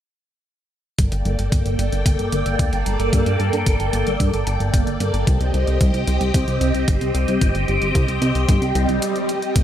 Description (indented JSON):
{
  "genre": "italo disco",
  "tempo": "112 BPM",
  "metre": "4/4",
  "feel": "straight",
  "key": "G minor",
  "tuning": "A4 = 440 Hz",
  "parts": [
    { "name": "phased string machine", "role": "sustained chords", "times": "1.0-9.6 s", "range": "G3 to G5", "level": "-22 LUFS", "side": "equal", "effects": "ensemble chorus, phaser" },
    { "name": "chorused synth bass", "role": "bass", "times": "1.0-9.6 s", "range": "G1 to G2", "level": "-21 LUFS", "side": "equal", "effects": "none" },
    { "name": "electronic hi-hat", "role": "drums", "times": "1.0-9.6 s", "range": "none", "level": "-31 LUFS", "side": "equal", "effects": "overdrive, studio reverb" },
    { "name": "electronic kick drum", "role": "drums", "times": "1.0-9.6 s", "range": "none", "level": "-18 LUFS", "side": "equal", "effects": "overdrive, studio reverb" },
    { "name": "swell", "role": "sound effects", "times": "8.7-9.6 s", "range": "none", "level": "-26 LUFS", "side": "right 2 dB", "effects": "none" }
  ],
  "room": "light reverb, digital ambience",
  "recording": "none",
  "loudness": "-17 LUFS",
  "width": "side -10 dB against mid",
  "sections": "1.0-9.6 A section",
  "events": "swell 8.7-9.6; break 9.0-9.6",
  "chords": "1.0 Gmadd9; 5.3 Cm"
}